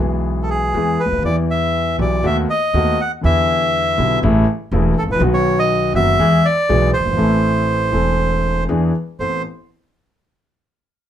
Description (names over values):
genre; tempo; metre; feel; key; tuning
tango; 121 BPM; 4/4; rubato; A minor; A4 = 440 Hz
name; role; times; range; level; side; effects
warm concert grand piano; accompaniment; 0.0-9.4 s; E1 to A4; -18 LUFS; left 2 dB; none
upright bass; bass; 0.0-9.4 s; E1 to E2; -21 LUFS; right 1 dB; none
bandoneon; melody; 0.4-9.4 s; G#4 to F#5; -18 LUFS; right 1 dB; none
room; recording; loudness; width
moderate club reverb, RT60 0.6 s; minimal, uncompressed stereo recording; -14 LUFS; side -10 dB against mid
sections
0.0-9.2 A section; 9.2-11.1 B section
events
none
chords
0.0 E; 1.2 Em; 2.2 B7/D#; 3.2 Em7; 4.2 A7; 5.2 B; 6.2 E; 7.2 Am; 8.7 E7; 9.2 Amadd9